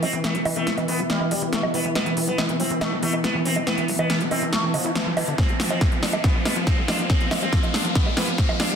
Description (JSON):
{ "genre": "psychedelic trance", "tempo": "140 BPM", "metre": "4/4", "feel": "straight", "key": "unclear", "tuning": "A4 = 442 Hz", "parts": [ { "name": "sitar", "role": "melody", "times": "0.0-8.7 s", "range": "E3 to D4", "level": "-28 LUFS", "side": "left 1 dB", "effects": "phaser, vintage 12-bit sampler grit, sidechain pumping, tape echo" }, { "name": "pulsing gated texture", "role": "sustained chords", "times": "0.0-8.8 s", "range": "E3 to B3", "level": "-31 LUFS", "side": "left 2 dB", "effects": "chorus, built-in reverb, sidechain pumping" }, { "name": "overdriven acid bass", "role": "riff", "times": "0.0-8.7 s", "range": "D3 to E4", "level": "-28 LUFS", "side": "equal", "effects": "auto-pan, sidechain pumping, digital delay" }, { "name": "tight sequencer bass", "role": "bass", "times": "0.0-8.8 s", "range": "D1 to F2", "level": "-37 LUFS", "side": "equal", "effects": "none" }, { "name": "big-room dance drum kit", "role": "drums", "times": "0.0-8.8 s", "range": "bongos, hi-hat, snare drum", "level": "-25 LUFS", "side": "right 1 dB", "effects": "none" }, { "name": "riser", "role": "sound effects", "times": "2.7-8.8 s", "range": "none", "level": "-34 LUFS", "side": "left 1 dB", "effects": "none" }, { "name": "deep dark ambient pad", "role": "texture", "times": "0.0-8.8 s", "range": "B3 to C6", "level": "-32 LUFS", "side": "right 2 dB", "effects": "chorus, built-in reverb, sidechain pumping" }, { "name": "electronic kick drum", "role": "drums", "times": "5.4-8.5 s", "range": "none", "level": "-21 LUFS", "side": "equal", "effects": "none" } ], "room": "moderate digital room reverb, RT60 1.0 s", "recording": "dense, heavily limited modern master", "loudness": "-20 LUFS", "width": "side -7 dB against mid", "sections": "0.0-8.8 A section", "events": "build-up 0.0-8.8; drum fill 0.0-8.8; riser 2.7-8.8", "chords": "0.0 E5; 5.4 F5" }